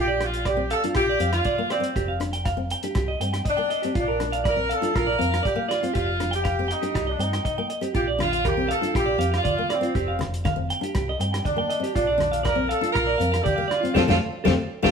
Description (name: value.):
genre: highlife guitar band.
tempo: 120 BPM.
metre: 4/4.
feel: straight.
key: Bb major.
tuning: A4 = 441 Hz.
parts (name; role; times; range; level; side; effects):
warm horn section; melody; 0.0-14.9 s; C4 to Bb4; -25 LUFS; equal; none.
clean electric guitar; arpeggios; 0.0-14.9 s; F4 to G5; -26 LUFS; right 4 dB; spring reverb.
fingered electric bass; bass; 0.0-14.9 s; F1 to G2; -29 LUFS; equal; none.
warm soul drum kit; drums; 0.2-14.9 s; hi-hat, kick drum, rim click, snare drum; -29 LUFS; equal; none.
nylon-string guitar; accompaniment; 0.6-14.9 s; A3 to F4; -30 LUFS; left 6 dB; none.
congas; percussion; 8.0-14.9 s; none; -32 LUFS; left 2 dB; none.
room: moderate stone room reverb, RT60 1.1 s.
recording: band playing live in one room.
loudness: -21 LUFS.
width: side -6 dB against mid.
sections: 0.0-14.9 A section.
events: band accent 14.0-14.9.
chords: 0.0 Bb; 2.0 Fsus2; 3.0 Cm; 4.0 Bb; 6.0 Fsus2; 7.0 Cm; 8.0 Bb; 10.0 Fsus2; 11.0 Cm; 12.0 Bb; 14.0 F.